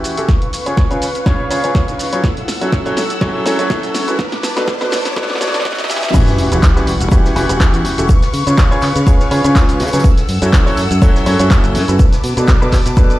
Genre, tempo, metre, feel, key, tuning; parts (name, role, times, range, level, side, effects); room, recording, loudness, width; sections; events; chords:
piano house; 123 BPM; 4/4; swing 54% on 16ths; E dorian; A4 = 443 Hz
rich studio string section; sustained chords; 0.0-13.2 s; G3 to E6; -24 LUFS; left 1 dB; sidechain pumping, low-pass filter
clear upright piano; riff; 0.0-13.2 s; B2 to E5; -18 LUFS; equal; sidechain pumping, low-pass filter, ping-pong delay
punchy analog drum machine; drums; 0.0-13.2 s; crash cymbal, handclaps, hi-hat, shaker, snare drum; -22 LUFS; equal
riser and sub drop; sound effects; 0.7-8.1 s; -24 LUFS; equal
electronic kick drum; drums; 0.3-13.1 s; -12 LUFS; equal
fingered electric bass; bass; 6.1-13.1 s; E1 to C#3; -17 LUFS; equal; sidechain pumping
vintage drum kit; drums; 6.1-13.1 s; hi-hat, shaker, snare drum; -30 LUFS; equal; high-pass filter on hats, high-pass filter on snare, high-pass filter on perc, high-pass filter on room
light reverb, small room ambience; played on a big sound system in a bare room, stone room reverb, high-pass filter; -11 LUFS; side -16 dB against mid
0.0-6.1 A section; 6.1-13.2 B section
build-up 0.0-6.1; drum fill 0.0-6.1; filter sweep on string section 0.0-6.1; filter sweep 0.0-6.1; riser 0.7-6.1; drop 6.1-13.2; impact 6.1-8.1
0.3 C#7; 2.2 F#m7; 4.2 Bm7; 6.1 Em69; 8.1 C#7; 10.0 F#m7; 12.0 Bm7